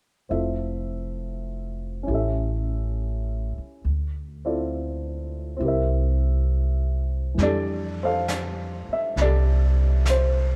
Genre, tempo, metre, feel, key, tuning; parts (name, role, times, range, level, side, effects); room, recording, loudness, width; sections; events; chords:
jazz ballad; 68 BPM; 4/4; swing 69% on 8ths; F major; A4 = 440 Hz
dark grand piano; accompaniment; 0.3-10.6 s; E3 to F5; -30 LUFS; equal
upright bass; bass; 0.3-10.6 s; F1 to F2; -26 LUFS; equal
vintage brush drum kit; drums; 7.4-10.6 s; brushed snare drum, hi-hat, snare drum; -36 LUFS; equal
light reverb; heard from further back in the room; -25 LUFS; mono
0.3-7.4 A section; 7.4-10.6 B section
0.3 Fmaj7; 2.1 A7; 3.8 Dm9; 5.6 C7; 7.4 Fmaj13